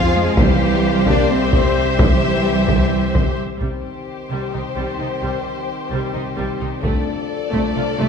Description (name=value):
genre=cinematic, epic orchestral film score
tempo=260 BPM (eighths)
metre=7/8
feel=straight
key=C dorian from 3.6 s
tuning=A4 = 440 Hz
part: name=warm symphonic violin section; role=melody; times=0.0-8.1 s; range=G4 to F5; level=-27 LUFS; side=left 6 dB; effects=none
part: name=warm symphonic violin section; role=second line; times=0.0-8.1 s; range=G4 to F5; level=-25 LUFS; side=left 3 dB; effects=none
part: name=rich symphonic viola section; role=accompaniment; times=0.0-8.1 s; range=G3 to C5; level=-25 LUFS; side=left 1 dB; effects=none
part: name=mellow French horn section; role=sustained chords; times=0.0-8.1 s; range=Eb3 to D4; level=-26 LUFS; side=left 2 dB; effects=none
part: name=rich studio cello section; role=bass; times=0.0-8.1 s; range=C3 to F4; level=-23 LUFS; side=right 3 dB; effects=none
part: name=warm symphonic double bass section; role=bass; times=0.0-8.1 s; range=C2 to F2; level=-25 LUFS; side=right 3 dB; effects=none
part: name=taiko ensemble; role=drums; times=0.4-7.7 s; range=none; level=-19 LUFS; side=equal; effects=none
part: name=timpani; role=percussion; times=0.4-1.0 s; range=C3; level=-26 LUFS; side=equal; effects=none
room=wet scoring stage reverb, RT60 1.9 s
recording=heard from further back in the room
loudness=-16 LUFS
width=side -6 dB against mid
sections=0.0-3.6 A section; 3.6-8.1 B section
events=none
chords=0.4 C; 3.6 Cm; 6.8 Dm/C